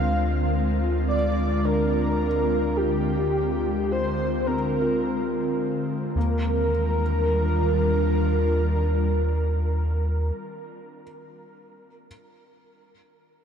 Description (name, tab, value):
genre	ambient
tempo	53 BPM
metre	3/4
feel	straight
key	Eb major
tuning	A4 = 440 Hz
part	breathy flute-like synth lead	melody	0.0-10.3 s	G4 to F5	-27 LUFS	right 1 dB	tremolo, ensemble chorus, diffuse ambient delay
part	ethereal airy pad	sustained chords	0.0-10.3 s	D3 to Bb4	-27 LUFS	left 1 dB	ensemble chorus, built-in reverb
part	felt-muted upright piano	arpeggios	0.0-12.1 s	Bb3 to F4	-33 LUFS	left 1 dB	diffuse ambient delay
part	round analog bass	bass	0.0-10.3 s	D2 to Eb2	-25 LUFS	equal	none
part	glass harmonica	texture	0.0-6.2 s	F5	-48 LUFS	left 1 dB	none
room	moderate huge ambient reverb, RT60 8.8 s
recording	none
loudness	-21 LUFS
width	side -7 dB against mid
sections	0.0-6.2 A section; 6.2-9.6 B section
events	none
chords	0.0 Bb13/D; 6.2 Ebmaj9